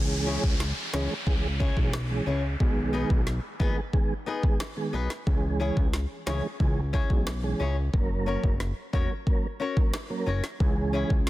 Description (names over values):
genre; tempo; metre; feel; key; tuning
dancehall; 90 BPM; 4/4; straight; C# dorian; A4 = 440 Hz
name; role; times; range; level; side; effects
mellow tonewheel organ; accompaniment; 0.0-11.2 s; D#3 to A#4; -32 LUFS; right 3 dB; chorus vibrato, fast rotary speaker
fat analog bass; bass; 0.0-11.3 s; E1 to C#2; -29 LUFS; equal; none
downlifter; sound effects; 0.0-5.3 s; none; -36 LUFS; equal; none
flamenco guitar; arpeggios; 0.3-11.1 s; B3 to C#5; -34 LUFS; left 5 dB; none
afro-pop drum kit; drums; 0.4-11.3 s; kick drum, rim click, snare drum; -26 LUFS; equal; soft clipping on snare
room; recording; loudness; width
little or no reverb; dense, heavily limited modern master; -24 LUFS; side -16 dB against mid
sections
0.0-11.3 A section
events
none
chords
0.0 C#m; 2.6 G#m; 5.3 C#m; 7.9 F#; 10.6 C#m